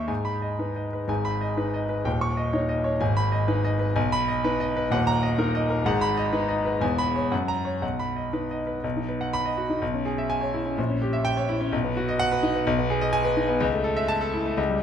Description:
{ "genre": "classical, virtuoso piano study", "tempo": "125 BPM", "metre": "2/4", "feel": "rubato", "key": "G# minor, B major from 4.9 s", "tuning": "A4 = 440 Hz", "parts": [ { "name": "clear grand piano", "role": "solo", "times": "0.0-14.8 s", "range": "D#1 to C#6", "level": "-23 LUFS", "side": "equal", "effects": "none" } ], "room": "moderate recital hall reverb, RT60 1.6 s", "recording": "close, detailed microphones", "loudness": "-23 LUFS", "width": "side -8 dB against mid", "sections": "0.0-1.1 A section; 1.1-8.8 A section; 8.8-14.8 B section", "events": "none", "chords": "0.1 G#m; 2.1 D#7; 3.0 G#m; 4.0 G#m/B; 4.9 D#m; 5.9 G#m7; 6.8 C#m7/E; 7.3 F#; 7.8 B; 9.8 C#m7/B; 10.8 A#dim7; 11.7 B; 12.7 G#m/B; 13.6 A/C#" }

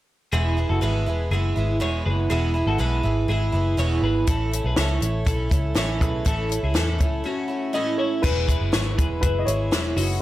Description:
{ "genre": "jangly indie pop", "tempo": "121 BPM", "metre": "4/4", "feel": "straight", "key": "E major", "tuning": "A4 = 440 Hz", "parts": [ { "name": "picked twelve-string acoustic guitar", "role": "accompaniment", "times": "0.3-10.2 s", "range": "E2 to E4", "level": "-27 LUFS", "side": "right 4 dB", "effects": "none" }, { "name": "twelve-string electric guitar", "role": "arpeggios", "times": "0.3-10.2 s", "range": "C#4 to C#5", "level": "-29 LUFS", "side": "left 3 dB", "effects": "spring reverb" }, { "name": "vintage muted picked electric bass", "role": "bass", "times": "0.3-10.2 s", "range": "E1 to E2", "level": "-24 LUFS", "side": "equal", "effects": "none" }, { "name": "compact cocktail drum kit", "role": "drums", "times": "4.3-10.1 s", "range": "crash cymbal, hi-hat, kick drum, snare drum", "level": "-23 LUFS", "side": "equal", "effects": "gated reverb" }, { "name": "dark upright piano", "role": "melody", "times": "7.7-10.2 s", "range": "B4 to D#5", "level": "-27 LUFS", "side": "left 2 dB", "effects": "none" } ], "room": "little or no reverb", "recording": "none", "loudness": "-20 LUFS", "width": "side -15 dB against mid", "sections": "0.3-8.2 A section; 8.2-10.2 B section", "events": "break 7.3-8.2", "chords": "0.3 E; 4.3 A; 8.2 E" }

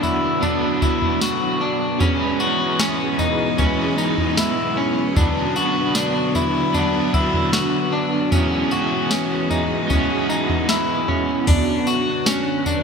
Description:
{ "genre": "dream pop", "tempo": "76 BPM", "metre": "4/4", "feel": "straight", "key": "unclear", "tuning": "A4 = 440 Hz", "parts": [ { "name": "overdriven electric guitar", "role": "accompaniment", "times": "0.0-12.0 s", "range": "B2 to B4", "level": "-25 LUFS", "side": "right 4 dB", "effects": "tremolo, lush chorus" }, { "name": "string machine, full ensemble", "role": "sustained chords", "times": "0.0-12.8 s", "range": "D3 to F#4", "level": "-23 LUFS", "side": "equal", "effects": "ensemble chorus" }, { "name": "electric guitar at the edge of break-up", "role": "arpeggios", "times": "0.0-12.8 s", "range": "C#4 to F#4", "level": "-22 LUFS", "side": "left 3 dB", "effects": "wide subtle chorus, digital delay" }, { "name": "soft vintage rhythm box", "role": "drums", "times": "0.0-12.8 s", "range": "crash cymbal, kick drum, snare drum, tambourine, toms", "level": "-22 LUFS", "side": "equal", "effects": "gated reverb" } ], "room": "wet lush hall reverb, RT60 2.7 s", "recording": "bright 1980s-style digital production", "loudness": "-17 LUFS", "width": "side -5 dB against mid", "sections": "0.0-11.5 A section; 11.5-12.8 A section", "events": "none", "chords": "0.0 Bm; 2.0 F#9sus4; 5.2 Bm; 8.3 F#9sus4; 11.5 Bm" }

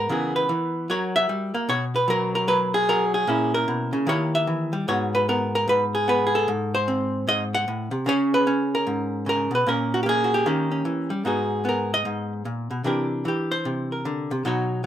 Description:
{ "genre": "solo jazz", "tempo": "150 BPM", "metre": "4/4", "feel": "swing 64% on 8ths", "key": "G# minor", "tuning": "A4 = 442 Hz", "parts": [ { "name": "archtop guitar, miked and amplified", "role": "solo", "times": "0.0-14.9 s", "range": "G#2 to F#5", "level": "-21 LUFS", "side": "equal", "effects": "none" } ], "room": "light reverb", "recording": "minimal, uncompressed stereo recording", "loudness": "-21 LUFS", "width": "side -11 dB against mid", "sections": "0.0-11.3 A section; 11.3-14.9 B section", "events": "hollow-body jazz guitar solo 11.3-14.9", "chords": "0.1 C#m7; 0.9 F#7b9; 1.7 B5; 3.3 A#dim; 4.1 D#; 4.9 G#m7; 6.5 G#7b9; 8.1 C#5; 9.7 A#m7; 10.5 D#7; 11.3 G#m9; 12.8 C9" }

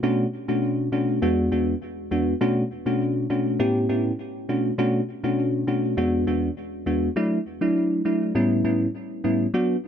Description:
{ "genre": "afrobeats", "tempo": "101 BPM", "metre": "4/4", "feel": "straight", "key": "B minor", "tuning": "A4 = 436 Hz", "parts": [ { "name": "bell-like FM electric piano", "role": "solo", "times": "0.0-9.8 s", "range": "E2 to G4", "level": "-21 LUFS", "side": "equal", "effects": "chorus, digital delay" } ], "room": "moderate small room reverb, RT60 0.6 s", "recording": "dark, warm production", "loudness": "-21 LUFS", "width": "side -8 dB against mid", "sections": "0.0-7.2 A section; 7.2-9.9 B section", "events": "none", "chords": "0.0 Bm7; 1.2 E7; 2.4 Bm7; 3.6 A7; 4.5 Bm7; 6.0 E7; 7.2 Dadd9; 8.4 A7" }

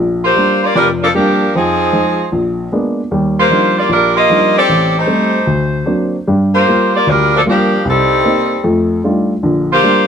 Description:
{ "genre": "jazz", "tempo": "152 BPM", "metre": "4/4", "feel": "swing 67% on 8ths", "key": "Bb major", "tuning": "A4 = 439 Hz", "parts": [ { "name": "warm baby grand piano", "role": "accompaniment", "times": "0.0-10.1 s", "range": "F1 to F4", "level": "-14 LUFS", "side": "equal", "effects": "none" }, { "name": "clear saxophone section", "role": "melody", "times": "0.2-10.1 s", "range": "F3 to Eb5", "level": "-12 LUFS", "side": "equal", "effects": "none" } ], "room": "light reverb", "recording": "close, detailed microphones", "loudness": "-11 LUFS", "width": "side -7 dB against mid", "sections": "0.0-10.1 A section", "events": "none", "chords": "0.0 Bb6; 1.5 Fm7; 2.3 Bb7b9; 3.1 Ebmaj9; 4.7 Am7b5; 5.5 Daug7; 6.3 Gm7; 7.9 Cm7; 8.6 F13; 9.4 Bb6" }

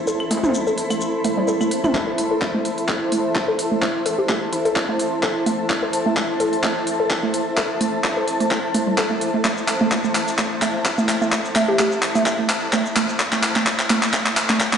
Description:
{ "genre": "minimal techno", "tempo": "128 BPM", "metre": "4/4", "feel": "swing 55% on 16ths", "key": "A minor", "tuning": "A4 = 443 Hz", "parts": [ { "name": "saturated sub bass", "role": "bass", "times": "0.0-1.9 s", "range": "G1 to A1", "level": "-37 LUFS", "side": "left 2 dB", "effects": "sidechain pumping, high-pass filter" }, { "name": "granular cloud pad", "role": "texture", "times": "0.0-14.8 s", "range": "E4 to B5", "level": "-23 LUFS", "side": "equal", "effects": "built-in reverb, sidechain pumping" }, { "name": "hollow square pluck", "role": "riff", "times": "0.1-14.8 s", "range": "G3 to A4", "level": "-23 LUFS", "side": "right 1 dB", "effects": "chorus, sidechain pumping, digital delay" }, { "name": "breakbeat sampler-style drum kit", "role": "drums", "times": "0.1-1.8 s", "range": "hi-hat, snare drum, tambourine", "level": "-35 LUFS", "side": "left 1 dB", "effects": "sidechain pumping on perc, high-pass filter on perc, low-pass filter on perc, high-pass filter on snare, low-pass filter on snare, sidechain pumping on hats, high-pass filter on hats, low-pass filter on hats" }, { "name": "garage drum kit", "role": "drums", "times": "0.1-14.8 s", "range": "handclaps, hi-hat, shaker", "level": "-22 LUFS", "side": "left 1 dB", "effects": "high-pass filter on perc, high-pass filter on hats, high-pass filter on snare, high-pass filter on room" }, { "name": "electronic claves and toms", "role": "percussion", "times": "0.2-1.9 s", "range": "none", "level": "-25 LUFS", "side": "equal", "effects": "tape echo" }, { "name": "electronic kick drum", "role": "drums", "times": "1.9-14.7 s", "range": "none", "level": "-27 LUFS", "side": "left 1 dB", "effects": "overdrive, high-pass filter on kick, high-pass filter on room" }, { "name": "hollow square pluck", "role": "melody", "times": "4.2-5.2, 11.7-11.9 s", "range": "E4 to G4", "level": "-25 LUFS", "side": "left 1 dB", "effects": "chorus, tape echo" } ], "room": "wet lush hall reverb, RT60 2.0 s", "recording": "played on a big sound system in a bare room, large studio reverb, nothing above 11.0 kHz", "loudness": "-18 LUFS", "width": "side -7 dB against mid", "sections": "0.0-1.9 A section; 1.9-14.8 B section", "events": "build-up 1.9-14.8; drum fill 1.9-14.8; filter sweep on synth arpeggio sound 1.9-14.8; filter sweep on synth pluck 1.9-14.8", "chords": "0.0 Am" }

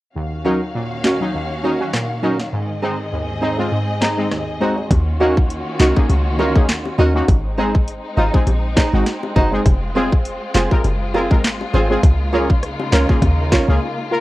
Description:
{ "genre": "dancehall", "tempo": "101 BPM", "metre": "4/4", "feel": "swing 56% on 16ths", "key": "Eb dorian", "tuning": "A4 = 440 Hz", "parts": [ { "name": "synth brass stab", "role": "accompaniment", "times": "0.2-14.2 s", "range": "Eb2 to Bb4", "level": "-21 LUFS", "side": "left 1 dB", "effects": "chorus, sidechain pumping" }, { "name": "warm studio string section", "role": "sustained chords", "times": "0.2-14.2 s", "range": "Eb2 to F5", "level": "-26 LUFS", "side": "left 1 dB", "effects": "sidechain pumping" }, { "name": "nylon-string guitar", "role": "arpeggios", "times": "0.4-13.7 s", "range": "C4 to Eb5", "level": "-20 LUFS", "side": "right 3 dB", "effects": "none" }, { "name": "island pop drum kit", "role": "drums", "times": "1.0-13.7 s", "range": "handclaps, hi-hat, kick drum, rim click, snare drum", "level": "-16 LUFS", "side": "equal", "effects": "none" }, { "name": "short 808-style bass", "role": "bass", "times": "4.9-13.8 s", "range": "F1 to Eb2", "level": "-19 LUFS", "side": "equal", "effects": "none" }, { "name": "bongos", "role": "percussion", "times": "4.9-13.7 s", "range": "none", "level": "-28 LUFS", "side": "left 4 dB", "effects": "none" } ], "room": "studio ambience", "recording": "worn, warbling old tape, cassette tape, warbly pitch drift", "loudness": "-15 LUFS", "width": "side -17 dB against mid", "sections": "0.2-4.9 A section; 4.9-14.2 B section", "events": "kick muted 3.7-4.9; break 13.8-14.2", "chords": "0.2 Ebm7; 2.5 Ab; 4.9 Ebm7; 7.3 Ab; 9.7 Fm; 12.0 Db6" }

